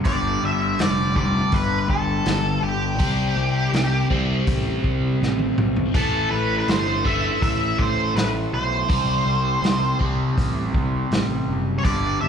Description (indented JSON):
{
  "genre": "blues rock power trio and southern rock",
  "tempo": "82 BPM",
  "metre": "4/4",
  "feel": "straight",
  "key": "unclear",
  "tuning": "A4 = 438 Hz",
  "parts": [
    { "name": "overdriven electric guitar", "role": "riff", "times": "0.0-12.3 s", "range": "G2 to C4", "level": "-24 LUFS", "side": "equal", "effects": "phaser" },
    { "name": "vintage drum kit", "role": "drums", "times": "0.0-12.0 s", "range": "hi-hat, kick drum, snare drum, toms", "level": "-24 LUFS", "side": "equal", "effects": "none" },
    { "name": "octave-fuzz lead guitar", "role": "melody", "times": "0.1-12.3 s", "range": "G4 to E5", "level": "-24 LUFS", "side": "right 1 dB", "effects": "distortion, slapback echo, digital delay" },
    { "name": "fuzz picked electric bass", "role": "bass", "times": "0.1-12.3 s", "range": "F1 to C2", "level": "-24 LUFS", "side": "left 1 dB", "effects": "overdrive" }
  ],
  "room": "studio ambience",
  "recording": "live gig heard through the venue's PA, club reverb",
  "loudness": "-19 LUFS",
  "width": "side -7 dB against mid",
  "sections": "0.0-12.3 A section",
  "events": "drum fill 5.2-6.0",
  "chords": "0.1 G5; 3.0 C5; 6.0 A5; 8.9 C5",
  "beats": "| 0.07 0.81 1.54 2.28 | 3.01 3.75 4.48 5.22 | 5.96 6.69 7.43 8.16 | 8.90 9.63 10.37 11.11 | 11.84"
}